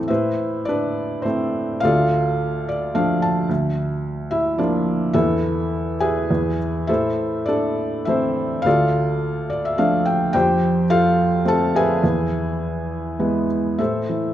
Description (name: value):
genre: classical, lyrical solo piano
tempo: 99-113 BPM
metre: 3/4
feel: rubato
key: A minor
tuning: A4 = 439 Hz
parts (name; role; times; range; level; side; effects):
- felt-muted upright piano; solo; 0.0-14.3 s; D2 to A5; -18 LUFS; equal; none
room: wet recital hall reverb, RT60 1.6 s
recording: recorded in a church or concert hall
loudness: -18 LUFS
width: side -12 dB against mid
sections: 0.1-13.8 A section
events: felt piano fill 2.4-3.5, 9.2-10.3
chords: 0.1 Amadd9; 1.8 Dm; 3.5 Bb/D; 5.1 Esus4; 6.3 E; 6.9 Am; 8.7 Dm; 10.3 F; 12.0 E; 13.8 Am